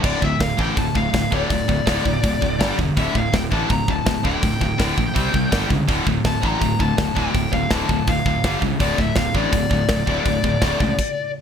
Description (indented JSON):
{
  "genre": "heavy metal",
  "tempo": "164 BPM",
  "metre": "4/4",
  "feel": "straight",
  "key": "D minor",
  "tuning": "A4 = 436 Hz",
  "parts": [
    { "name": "high-gain lead guitar", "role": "melody", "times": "0.0-11.3 s", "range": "D5 to Bb5", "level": "-25 LUFS", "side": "left 4 dB", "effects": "distortion" },
    { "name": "high-gain distorted guitar", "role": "riff", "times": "0.0-11.0 s", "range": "D2 to C4", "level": "-24 LUFS", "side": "left 13 dB", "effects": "distortion" },
    { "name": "scooped high-gain guitar", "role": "riff", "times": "0.0-11.0 s", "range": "D2 to C4", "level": "-24 LUFS", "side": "right 12 dB", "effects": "distortion" },
    { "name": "fuzz fingered electric bass", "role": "bass", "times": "0.0-10.9 s", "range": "D1 to C#2", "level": "-25 LUFS", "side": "right 1 dB", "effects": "overdrive" },
    { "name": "tight metal drum kit", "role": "drums", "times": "0.0-11.1 s", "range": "crash cymbal, hi-hat, kick drum, snare drum", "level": "-23 LUFS", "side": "equal", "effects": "none" }
  ],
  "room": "little or no reverb",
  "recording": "none",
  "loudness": "-17 LUFS",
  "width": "side -8 dB against mid",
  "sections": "0.0-11.4 A section",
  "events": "stop 11.0-11.4",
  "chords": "0.0 Dm; 2.6 G5; 3.0 D5; 5.2 C5; 5.5 G5; 5.9 Dm; 8.4 G5; 8.8 D5"
}